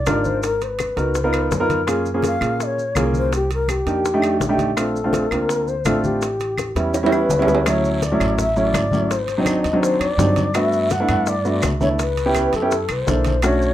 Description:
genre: Afro-Cuban jazz.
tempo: 166 BPM.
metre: 4/4.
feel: straight.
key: D major from 7.7 s.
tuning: A4 = 438 Hz.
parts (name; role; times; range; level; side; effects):
reedy long shakuhachi; melody; 0.0-13.7 s; G4 to F#5; -23 LUFS; left 2 dB; none.
upright bass; bass; 0.0-13.7 s; Ab1 to Bb2; -25 LUFS; equal; none.
warm baby grand piano; accompaniment; 0.1-13.7 s; F#3 to Bb4; -20 LUFS; right 1 dB; none.
bongos; percussion; 0.1-13.6 s; none; -29 LUFS; left 7 dB; none.
claves; percussion; 0.1-13.6 s; none; -30 LUFS; left 3 dB; none.
congas; percussion; 0.1-13.7 s; none; -28 LUFS; left 2 dB; none.
maracas; percussion; 0.1-13.7 s; none; -36 LUFS; right 4 dB; none.
timbales; percussion; 0.1-13.6 s; none; -28 LUFS; right 6 dB; none.
guiro; percussion; 7.7-13.7 s; none; -38 LUFS; right 4 dB; none.
room: wet studio reverb, RT60 0.6 s.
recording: rough home demo mix.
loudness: -17 LUFS.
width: side -12 dB against mid.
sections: 0.0-7.7 A section; 7.7-13.7 B section.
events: drum fill 6.8-7.7.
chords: 0.4 Abm9; 1.2 Db13; 1.9 Gbmaj7; 3.3 Cm9; 4.0 F13; 4.8 Bbmaj9; 6.2 A7; 7.7 Dmaj7; 9.1 G#7#11; 10.6 Gmaj9; 12.0 C#m7b5; 12.7 F#7alt.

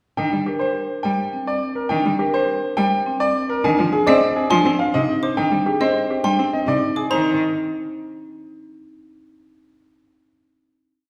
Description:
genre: classical, minimalist pattern music.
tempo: 104 BPM.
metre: 3/4.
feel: straight.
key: Eb major.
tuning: A4 = 445 Hz.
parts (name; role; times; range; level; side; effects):
bright grand piano; melody; 0.2-7.4 s; G4 to Ab5; -24 LUFS; equal; none.
rich cello; accompaniment; 0.2-7.4 s; C3 to C4; -26 LUFS; equal; none.
marimba with soft mallets; arpeggios; 0.2-7.4 s; C4 to C5; -25 LUFS; equal; none.
xylophone with wooden mallets; arpeggios; 4.1-7.4 s; Eb5 to D6; -27 LUFS; equal; none.
room: wet recital hall reverb, RT60 1.6 s.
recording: recorded in a church or concert hall.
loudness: -20 LUFS.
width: mono.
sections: 0.2-7.1 A section; 7.1-8.8 final chord.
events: none.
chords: 0.2 Ebmaj7 (rootless); 3.6 Fm7; 5.4 Abmaj7 (rootless); 7.1 Eb5.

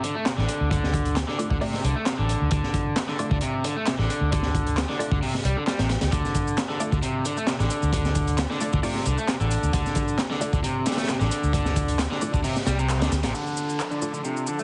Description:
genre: breakbeat, breaks.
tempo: 133 BPM.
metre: 4/4.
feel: swing 53% on 16ths.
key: unclear.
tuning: A4 = 439 Hz.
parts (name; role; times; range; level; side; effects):
crunchy overdriven guitar; riff; 0.0-14.6 s; C3 to A3; -30 LUFS; equal; low-pass filter, delay.
filtered dub chord stab; stabs; 0.0-14.6 s; A3 to D5; -36 LUFS; equal; phaser, subtle chorus, delay.
crunchy breakbeat drum kit; drums; 0.0-13.3 s; hi-hat, kick drum, snare drum; -29 LUFS; equal; none.
electronic handclaps and shaker; drums; 0.3-14.6 s; none; -37 LUFS; equal; overdrive.
vintage muted fingered electric bass; bass; 0.4-13.3 s; A1 to D2; -28 LUFS; equal; none.
phased analog pad; sustained chords; 13.3-14.6 s; F3 to A4; -36 LUFS; equal; phaser, chorus, vintage 12-bit sampler grit, sidechain pumping.
downlifter; sound effects; 13.3-14.6 s; none; -41 LUFS; equal; none.
room: studio reverb.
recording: heavily compressed radio sound, multiband compression, nothing above 10.3 kHz.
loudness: -25 LUFS.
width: mono.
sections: 0.0-13.3 A section; 13.3-14.6 B section.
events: band accent 12.9; filter sweep on overdriven electric guitar 13.3-14.6.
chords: 0.0 Dm.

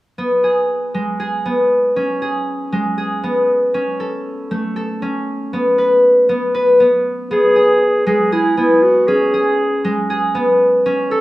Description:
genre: contemporary instrumental, chamber music in an uneven meter.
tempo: 236 BPM (eighths).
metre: 7/8.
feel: straight.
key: unclear.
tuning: A4 = 440 Hz.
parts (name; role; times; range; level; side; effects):
concert harp; arpeggios; 0.2-11.2 s; G#3 to B4; -14 LUFS; equal; none.
warm clarinet; melody; 7.3-11.2 s; E4 to A4; -15 LUFS; equal; none.
room: wet studio reverb, RT60 0.6 s.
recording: heard from further back in the room.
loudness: -13 LUFS.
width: side -17 dB against mid.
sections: 0.2-7.3 A section; 7.3-11.2 B section.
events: none.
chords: 0.2 G#m; 2.0 G#madd11; 3.7 A; 5.5 N.C.; 7.3 G#m; 9.1 G#madd11.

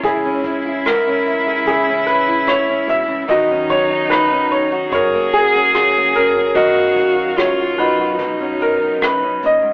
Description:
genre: acoustic folk-pop ballad.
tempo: 73 BPM.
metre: 4/4.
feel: straight.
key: unclear.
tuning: A4 = 440 Hz.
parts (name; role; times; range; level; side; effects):
clear upright piano; melody; 0.0-9.7 s; D#4 to E5; -19 LUFS; equal; none.
warm cello; second line; 0.0-9.4 s; D#4 to G#4; -21 LUFS; equal; tape echo.
fingerpicked steel-string acoustic guitar; accompaniment; 0.0-9.7 s; F#2 to G#4; -26 LUFS; equal; none.
warm chamber string section; sustained chords; 0.0-9.7 s; A#2 to E#5; -32 LUFS; equal; none.
upright bass; bass; 0.0-9.7 s; B1 to F#2; -44 LUFS; equal; none.
vintage brush drum kit; drums; 0.0-9.6 s; hi-hat, kick drum, rim click; -26 LUFS; equal; none.
room: moderate stone room reverb, RT60 1.0 s.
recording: band playing live in one room, telephone sound.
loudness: -16 LUFS.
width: mono.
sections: 0.0-9.7 A section.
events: none.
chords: 0.0 C#m; 3.3 Badd9/D#; 4.9 F#; 6.5 D#madd9/F#; 8.2 Badd9.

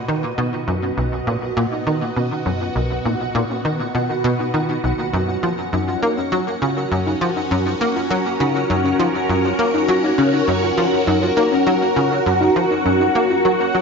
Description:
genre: ambient, sequencer-driven space music.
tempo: 101 BPM.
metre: 4/4.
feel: straight.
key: unclear.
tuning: A4 = 442 Hz.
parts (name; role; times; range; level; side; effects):
phased string machine; sustained chords; 0.0-13.8 s; B2 to D#5; -21 LUFS; equal; ensemble chorus, phaser.
soft round pluck; arpeggios; 0.0-13.8 s; Bb3 to Bb4; -25 LUFS; left 2 dB; chorus, auto-pan, cassette tape, tape echo.
pulsing gated texture; texture; 0.0-13.8 s; F#4 to F#5; -28 LUFS; equal; chorus, built-in reverb.
tight sequencer bass; riff; 0.1-13.8 s; B1 to Bb3; -20 LUFS; equal; ensemble chorus, tape echo.
room: wet concert hall reverb, RT60 2.2 s.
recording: nothing above 7.6 kHz.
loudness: -16 LUFS.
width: side -5 dB against mid.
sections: 0.0-13.8 A section.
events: fade-in on synth arpeggio sound 0.0-13.8; fade-in on string machine 0.0-13.8; fade-in on synth texture 0.0-13.8.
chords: 0.0 B; 5.1 Gb.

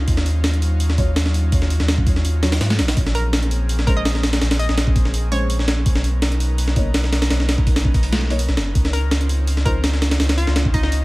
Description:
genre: drum and bass, jungle.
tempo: 166 BPM.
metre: 4/4.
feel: straight.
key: Bb minor.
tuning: A4 = 439 Hz.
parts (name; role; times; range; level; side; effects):
airy breathy pad; sustained chords; 0.0-11.0 s; Gb3 to A#4; -30 LUFS; equal; chorus.
soft dub sub bass; bass; 0.0-11.0 s; F#1 to Ab2; -19 LUFS; equal; tube saturation.
breakbeat sampler-style drum kit; drums; 0.1-11.0 s; hi-hat, kick drum, snare drum; -20 LUFS; equal; none.
dark concert grand piano; stabs; 1.0-9.7 s; F3 to Db5; -31 LUFS; left 2 dB; dub echo.
hollow square pluck; melody; 3.1-5.6, 8.9-10.9 s; Eb4 to Eb5; -28 LUFS; equal; chorus, dub echo.
room: digital ambience.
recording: vinyl crackle.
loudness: -16 LUFS.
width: side -21 dB against mid.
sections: 0.0-11.0 A section.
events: none.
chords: 0.1 Ebm9; 3.0 Bbm9; 5.9 Bmaj9; 8.8 Dbmaj9.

